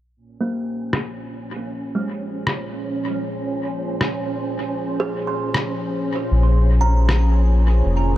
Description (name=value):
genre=ambient dub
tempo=78 BPM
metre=4/4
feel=swing 55% on 16ths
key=Bb minor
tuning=A4 = 439 Hz
part: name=warm analog pad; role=sustained chords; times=0.2-8.2 s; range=Bb2 to C5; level=-29 LUFS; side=equal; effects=chorus
part: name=wind-like tuned noise texture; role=texture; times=0.8-8.2 s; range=Db4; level=-28 LUFS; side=right 3 dB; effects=built-in reverb
part: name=kalimba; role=arpeggios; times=0.4-8.2 s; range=Ab3 to C6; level=-28 LUFS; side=right 2 dB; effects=low-pass filter, tape echo
part: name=electronic rim click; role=drums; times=0.9-7.3 s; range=none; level=-24 LUFS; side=left 1 dB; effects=low-pass filter on snare, low-pass filter on room, dub echo
part: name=round analog bass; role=bass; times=6.3-8.2 s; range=F1 to Bb1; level=-15 LUFS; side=equal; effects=none
room=digital ambience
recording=none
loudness=-19 LUFS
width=side -14 dB against mid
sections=0.2-8.2 A section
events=fade-in on analog synth pad 0.2-8.2; filter sweep on drum 0.2-8.2; filter sweep on kalimba 0.2-8.2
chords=0.2 Bbm9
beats=| 0.16 0.93 1.70 2.47 | 3.24 4.01 4.78 5.55 | 6.32 7.09 7.86